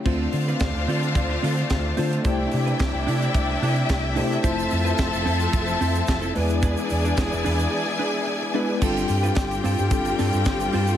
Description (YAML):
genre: disco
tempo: 110 BPM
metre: 4/4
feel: straight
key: unclear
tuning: A4 = 440 Hz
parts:
  - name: mellow tine electric piano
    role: accompaniment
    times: 0.0-11.0 s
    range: G3 to C5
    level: -28 LUFS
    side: left 2 dB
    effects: medium stereo tremolo
  - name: rich studio string section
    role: sustained chords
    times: 0.0-11.0 s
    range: C3 to E5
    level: -29 LUFS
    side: left 1 dB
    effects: none
  - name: clear studio string section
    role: second line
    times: 0.1-11.0 s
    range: D4 to A5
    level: -27 LUFS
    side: left 2 dB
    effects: none
  - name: clean electric guitar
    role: accompaniment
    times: 0.1-11.0 s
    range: C4 to D5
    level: -31 LUFS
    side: right 6 dB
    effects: spring reverb
  - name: overdriven fingered electric bass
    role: bass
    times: 0.1-10.9 s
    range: E1 to D3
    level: -25 LUFS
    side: equal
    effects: none
  - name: tight funk drum kit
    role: drums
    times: 0.1-11.0 s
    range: crash cymbal, hi-hat, kick drum, snare drum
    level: -27 LUFS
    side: equal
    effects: none
  - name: egg shaker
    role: percussion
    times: 4.4-11.0 s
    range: none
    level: -44 LUFS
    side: right 8 dB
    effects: none
room: light reverb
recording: none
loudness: -20 LUFS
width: side -10 dB against mid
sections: 0.1-8.8 A section; 8.8-11.0 B section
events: none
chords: 0.1 Dm7; 2.2 C69; 4.4 Fmaj7; 6.4 E7; 8.8 G9sus4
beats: | 0.06 0.60 1.15 1.70 | 2.25 2.80 3.35 3.89 | 4.44 4.99 5.54 6.08 | 6.63 7.18 7.72 8.27 | 8.82 9.37 9.91 10.46